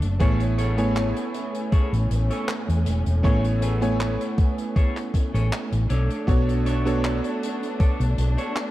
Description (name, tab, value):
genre	vaporwave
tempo	79 BPM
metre	4/4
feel	swing 53% on 16ths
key	unclear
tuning	A4 = 440 Hz
part	clear electric grand piano	accompaniment	0.0-8.7 s	A3 to G#5	-27 LUFS	right 2 dB	wide subtle chorus, tape echo
part	clear symphonic string section	sustained chords	0.0-8.7 s	A2 to D4	-34 LUFS	left 1 dB	none
part	hollow-body short-scale fingered electric bass	bass	0.0-8.3 s	E1 to E2	-22 LUFS	equal	none
part	swinging big-band drum kit	drums	0.0-8.7 s	handclaps, hi-hat	-36 LUFS	equal	none
part	clean electric guitar	riff	0.2-8.6 s	D4 to C#5	-34 LUFS	equal	lush chorus, tape echo
part	electronic kick drum	drums	0.2-8.0 s	none	-20 LUFS	equal	none
room	light reverb, small room ambience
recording	dark, warm production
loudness	-20 LUFS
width	side -15 dB against mid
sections	0.0-8.7 A section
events	none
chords	0.2 Amaj7; 5.9 Bm9